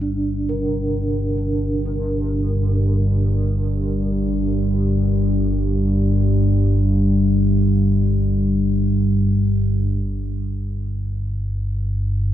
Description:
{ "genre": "dark ambient drone", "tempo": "free time", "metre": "none", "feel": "none", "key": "G minor", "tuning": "A4 = 440 Hz", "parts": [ { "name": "gamelan-type bronze metallophone", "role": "arpeggios", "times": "0.0-6.0 s", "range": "C3 to Bb4", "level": "-26 LUFS", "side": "right 1 dB", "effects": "dub echo" }, { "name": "deep rumbling drone", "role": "drone", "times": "0.0-12.3 s", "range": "G1 to G2", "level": "-18 LUFS", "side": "equal", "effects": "built-in reverb" } ], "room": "moderate plate reverb, RT60 2.4 s", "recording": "echo-heavy mix", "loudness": "-17 LUFS", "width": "side -12 dB against mid", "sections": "0.0-9.9 A section; 9.9-12.3 B section", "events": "fade-in on synth drone 0.0-9.9; fade-in on bronze metallophone 0.0-9.9", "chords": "0.0 Gm; 9.9 N.C." }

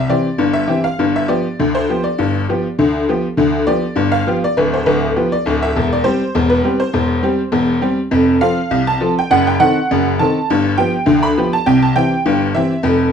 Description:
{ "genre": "ragtime piano", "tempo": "101 BPM", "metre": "2/4", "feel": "swing 54% on 16ths", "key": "C major", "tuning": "A4 = 440 Hz", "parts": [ { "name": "tack piano", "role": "solo", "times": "0.0-13.1 s", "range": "D1 to B5", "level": "-13 LUFS", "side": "equal", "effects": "none" } ], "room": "moderate studio reverb, RT60 0.6 s", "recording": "dark, warm production, faint mains hum", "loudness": "-13 LUFS", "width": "side -7 dB against mid", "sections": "0.0-13.1 A section", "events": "none", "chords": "0.0 C; 1.0 G7; 5.7 C/E; 8.1 F; 9.3 F#dim7; 10.5 G7; 11.7 C" }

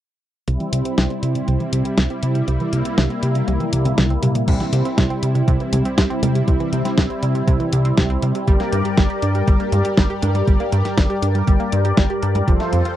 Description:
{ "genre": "italo disco", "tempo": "120 BPM", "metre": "4/4", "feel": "straight", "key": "unclear", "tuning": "A4 = 440 Hz", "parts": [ { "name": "warm analog pad", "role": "sustained chords", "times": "0.5-13.0 s", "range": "F3 to D5", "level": "-23 LUFS", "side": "left 1 dB", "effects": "chorus" }, { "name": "analog pluck", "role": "arpeggios", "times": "0.5-13.0 s", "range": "C2 to G4", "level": "-24 LUFS", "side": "right 4 dB", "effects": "chorus, tape echo" }, { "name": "round analog bass", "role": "bass", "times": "0.5-12.8 s", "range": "F1 to C3", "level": "-21 LUFS", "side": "equal", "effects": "none" }, { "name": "clean 12-bit digital drum machine", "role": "drums", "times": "0.5-13.0 s", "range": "congas, crash cymbal, hi-hat, snare drum, toms", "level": "-21 LUFS", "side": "equal", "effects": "none" }, { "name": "electronic kick drum", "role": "drums", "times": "0.5-12.6 s", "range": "none", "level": "-18 LUFS", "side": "equal", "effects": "high-pass filter on kick" } ], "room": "little or no reverb", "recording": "dry, close 1970s-style studio recording", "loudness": "-16 LUFS", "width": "side -12 dB against mid", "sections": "0.5-4.5 A section; 4.5-13.0 B section", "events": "filter sweep on analog synth bass 0.5-4.5; filter sweep on synth arpeggio sound 0.5-4.5; drum fill 3.5-4.5", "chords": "0.5 C; 8.5 Gm" }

